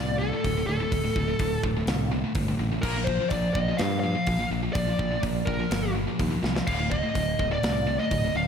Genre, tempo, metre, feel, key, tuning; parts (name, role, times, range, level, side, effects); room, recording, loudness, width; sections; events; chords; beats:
heavy metal; 125 BPM; 4/4; straight; D phrygian; A4 = 441 Hz
high-gain lead guitar; melody; 0.0-8.5 s; A4 to F5; -29 LUFS; equal; distortion, slapback echo
high-gain distorted guitar; riff; 0.0-8.5 s; D2 to Bb3; -29 LUFS; equal; distortion
modern bright picked electric bass; bass; 0.0-8.5 s; D1 to G2; -30 LUFS; equal
tight metal drum kit; drums; 0.4-8.2 s; crash cymbal, hi-hat, kick drum, snare drum; -31 LUFS; equal
moderate lush hall reverb, RT60 2.2 s; big arena sound; -24 LUFS; side -7 dB against mid
0.0-8.5 A section
drum fill 6.4
0.0 D5; 2.8 Bb5; 6.7 D5
0.45 | 0.93 1.41 1.89 2.36 | 2.84 3.32 3.80 4.28 | 4.76 5.24 5.72 6.20 | 6.67 7.15 7.63 8.11